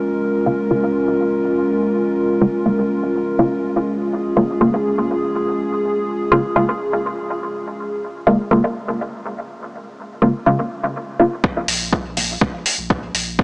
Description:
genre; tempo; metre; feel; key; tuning
dub techno; 123 BPM; 4/4; straight; Bb minor; A4 = 440 Hz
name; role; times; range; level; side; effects
dark analog pad; sustained chords; 0.0-11.4 s; Ab3 to Bb4; -19 LUFS; equal; chorus, sidechain pumping
filtered dub chord stab; stabs; 0.5-12.5 s; Db3 to F4; -18 LUFS; equal; phaser, sidechain pumping, dub echo
electronic kick drum; drums; 11.4-13.4 s; none; -18 LUFS; equal; overdrive
pure sine sub bass; bass; 11.7-13.4 s; Bb1; -31 LUFS; equal; sidechain pumping
electronic hi-hat; drums; 11.7-13.2 s; none; -19 LUFS; equal; overdrive
room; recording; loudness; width
light reverb; dry, gritty hardware recording, small speaker sound; -16 LUFS; side -29 dB against mid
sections
0.0-11.4 A section; 11.4-13.4 B section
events
filter sweep on synth stab 0.0-11.4, 11.4-13.4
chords
0.0 Bbm7; 11.4 N.C.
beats
0.22 0.71 1.20 | 1.68 2.17 2.66 3.15 | 3.63 4.12 4.61 5.10 | 5.58 6.07 6.56 7.05 | 7.54 8.02 8.51 9.00 | 9.49 9.97 10.46 10.95 | 11.44 11.93 12.41 12.90 | 13.39

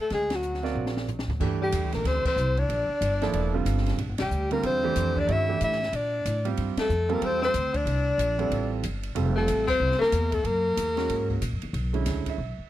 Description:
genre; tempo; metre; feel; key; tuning
modal jazz; 186 BPM; 4/4; swing 62% on 8ths; G dorian; A4 = 435 Hz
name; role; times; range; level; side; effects
breathy soprano saxophone; melody; 0.0-11.4 s; F#4 to E5; -27 LUFS; left 1 dB; none
warm tenor saxophone; second line; 0.0-11.4 s; F#3 to E4; -33 LUFS; left 6 dB; tape echo
upright bass; bass; 0.1-12.6 s; E1 to Bb2; -28 LUFS; equal; none
open jazz drum kit; drums; 0.1-12.3 s; crash cymbal, hi-hat, kick drum, ride cymbal, snare drum, toms; -36 LUFS; equal; none
clear grand piano; accompaniment; 0.6-12.7 s; D3 to E#5; -30 LUFS; right 9 dB; none
room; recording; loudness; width
little or no reverb; dry, close 1970s-style studio recording; -24 LUFS; side -14 dB against mid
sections
0.0-1.4 A section; 1.4-11.7 B section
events
band accent 0.3, 2.2, 4.2, 6.7, 9.6; drum fill 0.8-1.4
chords
0.1 D7alt; 1.4 Gm69; 6.6 F; 10.5 F#7; 11.7 Bm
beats
| 0.11 0.44 0.76 1.08 | 1.41 1.73 2.06 2.38 | 2.70 3.02 3.35 3.67 | 3.99 4.32 4.64 4.96 | 5.29 5.61 5.93 6.25 | 6.58 6.90 7.22 7.55 | 7.87 8.19 8.52 8.84 | 9.16 9.48 9.81 10.13 | 10.45 10.78 11.10 11.42 | 11.74 12.07 12.39

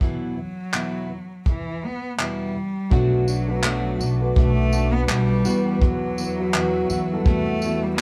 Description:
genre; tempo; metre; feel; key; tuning
acoustic pop; 83 BPM; 4/4; swing 60% on 16ths; B minor; A4 = 439 Hz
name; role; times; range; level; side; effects
warm cello; melody; 0.0-8.0 s; E3 to B3; -29 LUFS; equal; none
fingerpicked plugged-in steel-string acoustic guitar; accompaniment; 0.0-8.0 s; E2 to F#4; -29 LUFS; equal; none
vintage brush drum kit; drums; 0.0-7.8 s; handclaps, kick drum, tambourine; -25 LUFS; equal; none
dark upright piano; accompaniment; 2.9-8.0 s; E3 to B4; -32 LUFS; equal; none
glassy FM pad; sustained chords; 3.5-8.0 s; B4 to E6; -35 LUFS; equal; ensemble chorus, built-in reverb, phaser
upright bass; bass; 2.9-8.0 s; B1 to E2; -26 LUFS; equal; none
room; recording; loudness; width
moderate large studio reverb, RT60 0.9 s; band playing live in one room; -22 LUFS; mono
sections
0.0-2.9 A section; 2.9-8.0 B section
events
none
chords
0.0 Em; 2.9 Bm7; 5.4 Emadd9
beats
| 0.01 0.74 1.46 2.19 | 2.91 3.64 4.36 5.08 | 5.81 6.53 7.26 7.98

